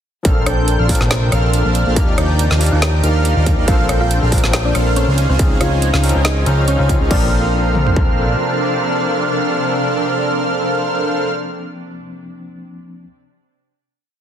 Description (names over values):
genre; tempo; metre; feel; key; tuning
future bass; 140 BPM; 4/4; swing 54% on 16ths, half-time; Bb major; A4 = 438 Hz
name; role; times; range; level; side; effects
overdriven tine electric piano; accompaniment; 0.2-13.1 s; F3 to A5; -25 LUFS; left 4 dB; fast tremolo, sidechain pumping, ping-pong delay
shimmering ambient pad; sustained chords; 1.3-11.3 s; C3 to F4; -26 LUFS; right 1 dB; chorus, built-in reverb, sidechain pumping
airy dreamy lead; arpeggios; 0.2-11.3 s; F6 to Ab6; -26 LUFS; equal; chorus, sidechain pumping
fat analog bass; bass; 0.2-8.4 s; Bb1 to Eb2; -16 LUFS; equal; sidechain pumping
dubstep drum kit; drums; 0.2-8.1 s; kick drum, toms; -16 LUFS; equal; distortion
trap drum kit; drums; 0.2-7.2 s; crash cymbal, hi-hat, rim click, snare drum; -21 LUFS; right 1 dB; none
soft supersaw; riff; 0.3-11.3 s; D4 to Ab5; -20 LUFS; right 1 dB; sidechain pumping, ping-pong delay
thumb-piano-like synth pluck; melody; 3.7-11.9 s; C4 to F5; -24 LUFS; equal; chorus, vintage 12-bit sampler grit, sidechain pumping, ping-pong delay
room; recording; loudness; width
light reverb, digital ambience; heavily compressed radio sound; -13 LUFS; side -9 dB against mid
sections
0.2-7.1 drop; 7.1-10.5 final chord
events
drop 0.2-7.1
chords
0.2 Bbmaj9; 2.0 Ebmaj9; 3.7 Bbmaj9; 5.2 Dbmaj9; 7.1 Bbmaj9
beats
| 0.25 0.68 1.11 1.54 | 1.97 2.39 2.82 3.25 | 3.68 4.11 4.54 4.96 | 5.39 5.82 6.25 6.68 | 7.11 7.54 7.96 8.39 | 8.82 9.25 9.68 10.11